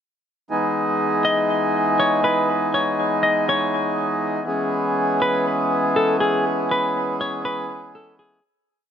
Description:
hip hop; 121 BPM; 4/4; half-time; E major; A4 = 442 Hz
mellow accordion; sustained chords; 0.5-8.4 s; E3 to G#4; -20 LUFS; equal
semi-hollow electric guitar; melody; 1.2-8.4 s; G#4 to D#5; -22 LUFS; left 1 dB; low-pass filter, dub echo
wet spring reverb, RT60 1.4 s, small room reverb; echo-heavy mix; -18 LUFS; side -8 dB against mid
0.5-8.4 breakdown
fade-out 6.5-8.4
0.5 Emaj7; 4.5 C#m7
| 0.51 1.00 1.50 2.00 | 2.49 2.99 3.48 3.98 | 4.47 4.97 5.47 5.96 | 6.46 6.95 7.45 7.95

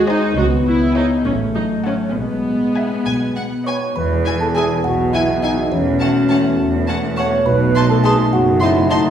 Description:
cinematic, playful, whimsical film cue; 68 BPM (dotted quarters); 6/8; straight; E major; A4 = 440 Hz
mellow French horn section; sustained chords; 0.0-9.1 s; G#3 to G#4; -21 LUFS; left 2 dB
concert harp; arpeggios; 0.0-9.1 s; A2 to B#4; -27 LUFS; left 4 dB
clear chamber cello section; bass; 0.0-9.0 s; C#2 to B2; -24 LUFS; right 2 dB
clear chamber double bass section; bass; 0.0-9.0 s; E1 to D#2; -22 LUFS; right 2 dB
clear chamber violin section; melody; 0.1-9.0 s; F#5 to C6; -28 LUFS; left 2 dB
clear chamber violin section; second line; 0.1-9.0 s; B4 to A5; -29 LUFS; equal
rich studio viola section; accompaniment; 0.1-9.0 s; B3 to F#4; -22 LUFS; right 1 dB
music box; melody; 3.7-9.1 s; C#5 to C#6; -23 LUFS; right 2 dB
dark clarinet; second line; 3.7-9.1 s; C#4 to C#5; -19 LUFS; right 1 dB
wet scoring stage reverb, RT60 1.4 s; heard from further back in the room, studio reverb; -14 LUFS; side -9 dB against mid
0.0-4.0 A section; 4.0-9.1 B section
0.4 C#m; 1.3 F#m/A; 2.2 E/B; 3.1 B; 4.0 E; 5.7 F#m/E; 7.5 B7b9
| 0.37 1.25 | 2.16 3.06 | 3.96 4.84 | 5.72 6.59 | 7.46 8.32

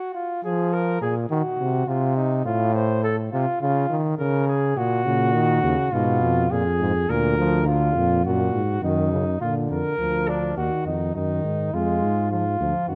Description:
classical, imitative canzona for brass ensemble; 104 BPM; 4/4; straight; Eb minor; A4 = 440 Hz
mellow flugelhorn; second line; 0.0-12.9 s; D4 to C5; -27 LUFS; equal
mellow trombone; accompaniment; 0.5-12.9 s; Ab2 to Ab3; -26 LUFS; equal
dark bass trombone; bass; 5.0-12.9 s; D2 to Bb2; -27 LUFS; equal
light reverb; close, detailed microphones; -22 LUFS; mono
0.0-9.4 A section; 9.4-12.9 B section
0.2 Bb5/F; 1.3 Cdim; 2.5 F/A; 3.6 Bbm/Db; 4.8 Ebm/Bb; 5.9 Fdim; 7.1 Bb/D; 8.2 Ebm/Gb; 9.4 Bb; 10.6 Ebm; 11.7 Ddim/F (rootless)
| 0.15 0.72 1.30 1.88 | 2.45 3.03 3.61 4.19 | 4.76 5.34 5.92 6.51 | 7.09 7.67 8.25 8.83 | 9.41 9.99 10.57 11.16 | 11.73 12.31 12.89

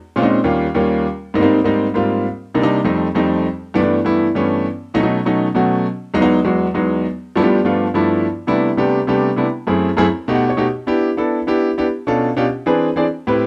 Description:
jazz; 200 BPM; 4/4; straight; C major from 8.2 s; A4 = 440 Hz
clear baby grand piano; solo; 0.2-13.5 s; D#2 to F#5; -17 LUFS; equal
light reverb; close, detailed microphones; -17 LUFS; mono
0.0-8.2 A section; 8.2-13.5 B section
grand piano fill 10.2-10.6
0.4 D#7; 1.0 G#maj7; 2.2 Cm7; 2.8 F9; 3.4 G69; 4.6 B7; 5.8 Emaj7; 7.0 G13; 8.2 Cmaj13; 9.4 F#m7b5; 10.0 B7b13; 10.6 Em7; 11.8 Bm7b5; 12.4 E7b13
0.15 0.45 0.75 | 1.05 1.35 1.65 1.95 | 2.25 2.55 2.85 3.15 | 3.45 3.75 4.05 4.35 | 4.65 4.95 5.25 5.55 | 5.85 6.15 6.45 6.75 | 7.05 7.35 7.65 7.95 | 8.25 8.55 8.85 9.15 | 9.45 9.75 10.05 10.35 | 10.65 10.95 11.25 11.55 | 11.85 12.15 12.45 12.74 | 13.04 13.34

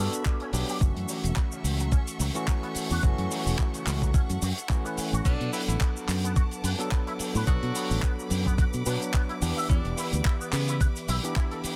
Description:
nu-disco, nu disco; 108 BPM; 4/4; swing 56% on 16ths; B minor; A4 = 440 Hz
overdriven tine electric piano; accompaniment; 0.0-11.8 s; E3 to D5; -36 LUFS; equal
clear studio violin section; sustained chords; 0.0-11.8 s; A4 to D6; -43 LUFS; equal; sidechain pumping
electric guitar with an envelope filter; riff; 0.0-11.6 s; C#3 to E5; -40 LUFS; equal; ensemble chorus, tape echo
fingered electric bass; bass; 0.0-11.7 s; E1 to C#3; -31 LUFS; equal
damped 70s drum kit; drums; 0.1-11.8 s; crash cymbal, handclaps, hi-hat, shaker; -36 LUFS; equal; soft clipping on snare
electronic kick drum; drums; 0.3-11.5 s; -27 LUFS; equal
clear tenor saxophone; melody; 5.2-10.8 s; B3 to F#4; -41 LUFS; equal; vintage 12-bit sampler grit, tape echo
little or no reverb; dense, heavily limited modern master; -27 LUFS; mono
0.0-11.8 A section
0.0 Gmaj7; 0.8 F#m7; 5.3 Bm7; 9.4 Em7
0.25 | 0.81 1.36 1.92 2.47 | 3.03 3.58 4.14 4.70 | 5.25 5.81 6.36 6.92 | 7.47 8.03 8.58 9.14 | 9.70 10.25 10.81 11.36

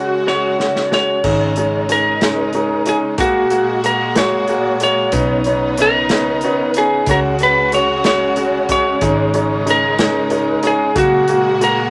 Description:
six-eight pop ballad; 62 BPM (dotted quarters); 6/8; straight; A4 = 445 Hz
lightly driven lead guitar; melody; 0.0-11.9 s; F#4 to C#5; -19 LUFS; equal
bright concert grand piano; accompaniment; 0.0-11.9 s; G#3 to F#4; -20 LUFS; equal
rich studio string section; sustained chords; 0.0-11.9 s; A#2 to F#4; -26 LUFS; equal
natural country drum kit; drums; 0.3-11.8 s; crash cymbal, hi-hat, kick drum, snare drum; -24 LUFS; equal
vintage muted picked electric bass; bass; 1.2-11.9 s; F#1 to C#2; -27 LUFS; equal
moderate small room reverb, RT60 0.5 s; -16 LUFS; mono
0.0-1.2 A section; 1.2-11.9 B section
drum fill 0.3-1.2
0.0 C#sus4; 1.2 G#sus4; 3.2 F#add9; 5.1 Badd9; 7.1 C#sus4; 9.0 G#sus4; 11.0 F#add9
0.27 | 1.24 2.21 | 3.19 4.16 | 5.13 6.10 | 7.08 8.05 | 9.02 9.99 | 10.96

